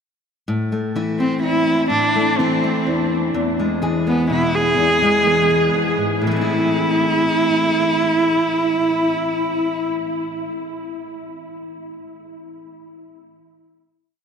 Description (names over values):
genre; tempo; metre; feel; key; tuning
indie folk with a building arrangement; 126 BPM; 3/4; straight; A harmonic minor; A4 = 439 Hz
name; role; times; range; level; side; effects
fingerpicked steel-string acoustic guitar; accompaniment; 0.5-10.6 s; E2 to G#4; -21 LUFS; left 2 dB; none
warm cello; melody; 1.2-9.8 s; B3 to G#4; -18 LUFS; right 1 dB; ping-pong delay
room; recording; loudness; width
wet huge ambient reverb, RT60 8.6 s; dreamy mix soaked in reverb; -16 LUFS; side -6 dB against mid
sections
0.5-6.2 breakdown; 6.2-9.1 final chord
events
none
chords
0.5 Am; 3.3 E; 6.2 Am